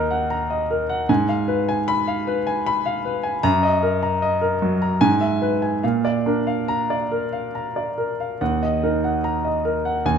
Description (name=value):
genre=classical, romantic character piece for solo piano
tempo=68-77 BPM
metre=3/4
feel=rubato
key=Eb minor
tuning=A4 = 441 Hz
part: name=clear concert grand piano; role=solo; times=0.0-10.2 s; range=Eb2 to Cb6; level=-19 LUFS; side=equal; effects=none
room=moderate stone room reverb, RT60 1.4 s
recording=none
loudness=-19 LUFS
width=side -7 dB against mid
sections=0.0-10.2 A section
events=none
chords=0.0 Ebm; 1.1 Fdim/Ab; 3.4 Ebm/Gb; 5.0 E/G#; 5.8 Bb; 8.4 Ebm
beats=0.30 | 1.09 1.87 2.65 | 3.43 4.21 5.01 | 5.83 6.67 7.54 | 8.40 9.23 10.04